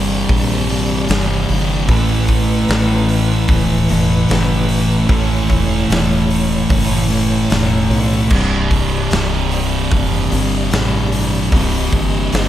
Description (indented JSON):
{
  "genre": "stoner and doom metal",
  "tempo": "75 BPM",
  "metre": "4/4",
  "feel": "straight",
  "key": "unclear",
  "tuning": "A4 = 440 Hz",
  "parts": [
    { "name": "tonewheel organ", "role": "sustained chords", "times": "0.0-12.5 s", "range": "A3 to Eb5", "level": "-25 LUFS", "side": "equal", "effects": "slow rotary speaker, chorus vibrato" },
    { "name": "thick fuzz guitar", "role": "riff", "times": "0.0-12.5 s", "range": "C2 to A3", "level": "-19 LUFS", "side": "left 6 dB", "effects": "distortion" },
    { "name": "thick fuzz guitar", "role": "riff", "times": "0.0-12.5 s", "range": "C2 to A3", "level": "-19 LUFS", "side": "right 6 dB", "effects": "distortion" },
    { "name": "woody fretless electric bass", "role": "bass", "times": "0.0-12.5 s", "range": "C1 to B1", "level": "-19 LUFS", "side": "equal", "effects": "tube saturation" },
    { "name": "big rock drum kit", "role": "drums", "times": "0.3-12.5 s", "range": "crash cymbal, hi-hat, kick drum, snare drum", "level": "-20 LUFS", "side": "equal", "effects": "none" }
  ],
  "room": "light reverb",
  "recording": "dark, warm production",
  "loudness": "-13 LUFS",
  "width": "side -12 dB against mid",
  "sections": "0.0-12.5 A section",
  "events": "none",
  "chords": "0.0 C5; 1.9 A; 8.3 Cm"
}